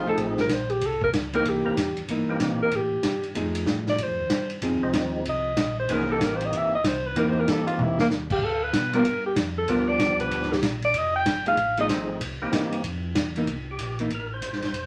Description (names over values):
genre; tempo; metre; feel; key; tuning
soul jazz organ trio; 190 BPM; 4/4; swing 63% on 8ths; unclear; A4 = 440 Hz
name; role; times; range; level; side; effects
clear alto saxophone; melody; 0.0-11.9 s; Bb3 to G5; -28 LUFS; equal; none
percussive tonewheel organ; melody; 0.0-2.7, 4.8-14.9 s; E3 to C5; -33 LUFS; equal; slow rotary speaker, overdrive
mellow tonewheel organ; bass; 0.0-14.9 s; F1 to C3; -37 LUFS; equal; chorus vibrato, slow rotary speaker
archtop guitar, miked and amplified; accompaniment; 0.1-14.1 s; E3 to A#4; -30 LUFS; equal; none
vintage drum kit; drums; 0.2-14.8 s; crash cymbal, hi-hat, kick drum, ride cymbal, snare drum, toms; -31 LUFS; equal; none
room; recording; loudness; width
wet small room reverb, RT60 0.5 s; vinyl crackle; -25 LUFS; mono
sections
0.0-13.5 A section; 13.5-14.9 B section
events
alto saxophone solo 0.0-13.5; drum fill 7.8-8.1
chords
0.0 F7#9; 0.8 C7#9; 3.4 F7#9; 4.6 Fm7; 5.9 C7#9; 8.4 G7#9; 10.9 F7#9; 12.2 C7#9; 13.5 C7(no3)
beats
0.18 0.50 | 0.81 1.13 1.45 1.77 | 2.08 2.40 2.72 3.04 | 3.35 3.67 3.99 4.30 | 4.62 4.94 5.25 5.57 | 5.89 6.21 6.52 6.84 | 7.15 7.47 7.79 8.10 | 8.42 8.73 9.05 9.37 | 9.68 10.00 10.31 10.63 | 10.94 11.26 11.57 11.89 | 12.21 12.52 12.84 13.15 | 13.47 13.79 14.10 14.42 | 14.74